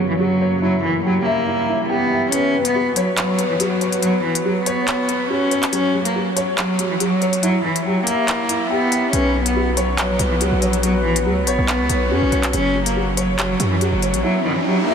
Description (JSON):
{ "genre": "hip hop, drill", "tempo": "141 BPM", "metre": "4/4", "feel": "half-time", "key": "unclear", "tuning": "A4 = 440 Hz", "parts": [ { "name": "rich cello", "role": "melody", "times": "0.0-14.9 s", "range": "E3 to C#4", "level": "-20 LUFS", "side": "equal", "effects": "low-pass filter, diffuse ambient delay" }, { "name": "dark baby grand piano", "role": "accompaniment", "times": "0.0-14.9 s", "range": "F#3 to E5", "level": "-21 LUFS", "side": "left 1 dB", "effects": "ensemble chorus, low-pass filter" }, { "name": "deep dark ambient pad", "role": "sustained chords", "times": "0.0-2.3 s", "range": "F#2 to A#3", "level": "-29 LUFS", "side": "right 1 dB", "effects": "chorus, built-in reverb, low-pass filter" }, { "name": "drill drum kit", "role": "drums", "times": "2.3-14.2 s", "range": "handclaps, hi-hat", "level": "-24 LUFS", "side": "left 1 dB", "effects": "none" }, { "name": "distorted 808-style bass", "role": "bass", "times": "9.1-14.2 s", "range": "F#1 to F#2", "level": "-22 LUFS", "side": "equal", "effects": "distortion" }, { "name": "riser", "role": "sound effects", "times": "13.8-14.9 s", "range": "none", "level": "-26 LUFS", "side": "right 2 dB", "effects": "none" } ], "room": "moderate huge ambient reverb, RT60 7.3 s", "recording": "dreamy mix soaked in reverb", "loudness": "-16 LUFS", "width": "side -7 dB against mid", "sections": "0.0-2.3 A section; 2.3-14.9 B section", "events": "filter sweep 0.0-2.3; kick muted 2.3-9.1; riser 13.8-14.9", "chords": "0.0 F#; 0.6 Em; 2.3 Bsus2; 5.7 F#5; 7.4 Em; 9.1 Bsus2; 12.5 F#5; 14.2 Em" }